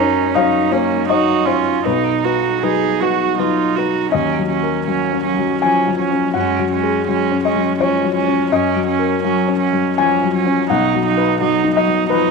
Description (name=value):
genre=neoclassical piano and strings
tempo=81 BPM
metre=3/4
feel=uneven beats, rubato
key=unclear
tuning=A4 = 440 Hz
part: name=warm cello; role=second line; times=0.0-12.3 s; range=F#3 to G#4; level=-23 LUFS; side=right 10 dB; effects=none
part: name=felt-muted upright piano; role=accompaniment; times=0.0-12.3 s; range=B1 to G#5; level=-17 LUFS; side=left 10 dB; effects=none
part: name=warm viola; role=accompaniment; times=0.0-12.3 s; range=C#4 to F#4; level=-18 LUFS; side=right 12 dB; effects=none
room=moderate echo chamber reverb, RT60 2.3 s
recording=1960s-style stereo with parts hard left and right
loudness=-14 LUFS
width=side -4 dB against mid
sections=0.0-4.1 A section; 4.1-12.3 B section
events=none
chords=0.0 D#m7/F#; 1.8 B; 4.1 D#m7; 6.3 F#sus2; 8.5 D#m7/F#; 10.7 B